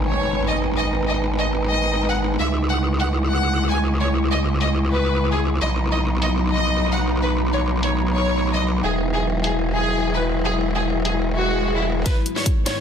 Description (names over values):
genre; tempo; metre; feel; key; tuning
heavy wobble dubstep; 149 BPM; 4/4; half-time; G# minor; A4 = 440 Hz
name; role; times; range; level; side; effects
evolving wavetable pad; sustained chords; 0.0-12.8 s; G#2 to B4; -24 LUFS; equal; chorus, built-in reverb, sidechain pumping
growl bass; bass; 0.0-12.0 s; E1 to C#2; -22 LUFS; equal; distortion, chorus, overdrive
impact, swell and riser; sound effects; 0.0-0.8, 11.4-12.8 s; none; -31 LUFS; right 1 dB; none
warm symphonic violin section; melody; 0.1-12.7 s; E4 to G#5; -24 LUFS; left 1 dB; digital delay
dubstep drum kit; drums; 1.4-12.7 s; hi-hat, snare drum; -27 LUFS; left 1 dB; high-pass filter on hats, low-pass filter on hats, high-pass filter on snare, low-pass filter on snare, high-pass filter on room, low-pass filter on room
electronic kick drum; drums; 12.1-12.5 s; none; -20 LUFS; equal; none
room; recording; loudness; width
moderate digital room reverb, RT60 1.0 s; dense, heavily limited modern master; -18 LUFS; side -8 dB against mid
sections
0.0-12.1 A section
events
impact 0.0-0.8; filter sweep on ambient pad 0.0-12.1; swell 11.4-12.1; drum fill 12.1-12.8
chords
0.0 G#m; 2.4 C#m; 5.6 B; 8.8 Eadd9; 12.1 G#m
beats
0.38 | 0.78 1.19 1.59 1.99 | 2.39 2.80 3.20 3.60 | 4.00 4.41 4.81 5.21 | 5.62 6.02 6.42 6.82 | 7.22 7.63 8.03 8.43 | 8.84 9.24 9.64 10.04 | 10.45 10.85 11.25 11.65 | 12.06 12.46